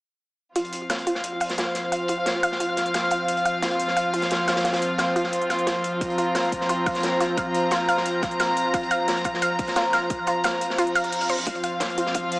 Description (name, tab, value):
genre	dark technical drum and bass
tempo	176 BPM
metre	4/4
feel	straight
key	unclear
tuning	A4 = 440 Hz
part	dark studio string section	sustained chords	0.6-12.4 s	F3 to Bb5	-25 LUFS	equal	sidechain pumping
part	analog pluck	arpeggios	0.6-12.2 s	F4 to F5	-27 LUFS	equal	chorus, sidechain pumping, tape echo
part	crunchy breakbeat drum kit	drums	0.6-12.4 s	hi-hat, snare drum	-30 LUFS	equal	high-pass filter on hats, high-pass filter on snare, high-pass filter on room
part	electronic hi-hat	drums	0.6-12.4 s	none	-36 LUFS	equal	none
part	airy breathy pad	texture	1.0-12.4 s	F4 to F5	-28 LUFS	equal	chorus, sidechain pumping
part	electronic kick drum	drums	6.0-12.2 s	none	-31 LUFS	equal	high-pass filter on kick
part	reverse cymbal and riser	sound effects	10.9-12.4 s	none	-34 LUFS	right 2 dB	none
room	wet lush hall reverb, RT60 2.0 s, small room ambience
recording	small speaker sound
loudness	-21 LUFS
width	side -22 dB against mid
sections	0.6-11.5 A section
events	filter sweep on synth arpeggio sound 0.6-11.5; kick drops out 10.8-11.5; reverse cymbal 10.9-11.5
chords	0.6 F5